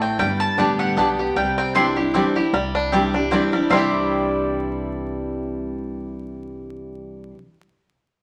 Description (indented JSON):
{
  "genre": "bluegrass",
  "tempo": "154 BPM",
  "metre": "3/4",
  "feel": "swing 55% on 8ths",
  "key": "C major",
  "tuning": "A4 = 440 Hz",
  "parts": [
    { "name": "bluegrass banjo", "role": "melody", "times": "0.0-7.4 s", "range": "G3 to G4", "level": "-28 LUFS", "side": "equal", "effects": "none" },
    { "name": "mandolin", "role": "melody", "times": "0.0-7.3 s", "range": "F#5 to C6", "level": "-26 LUFS", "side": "equal", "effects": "none" },
    { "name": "picked steel-string acoustic guitar", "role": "accompaniment", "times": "0.0-7.4 s", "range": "G2 to G4", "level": "-25 LUFS", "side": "equal", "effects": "none" },
    { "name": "upright bass", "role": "bass", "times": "0.0-7.3 s", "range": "G1 to C2", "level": "-35 LUFS", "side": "equal", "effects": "none" },
    { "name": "mandolin", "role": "stabs", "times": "0.6-7.4 s", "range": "B3 to A5", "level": "-27 LUFS", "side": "equal", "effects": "none" }
  ],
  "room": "wet studio reverb, RT60 0.8 s",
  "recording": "vinyl crackle",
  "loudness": "-21 LUFS",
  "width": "mono",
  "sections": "0.0-2.5 A section; 2.5-3.7 B section; 3.7-6.0 C section",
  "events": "none",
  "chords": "0.2 Gadd9; 1.4 Cadd9"
}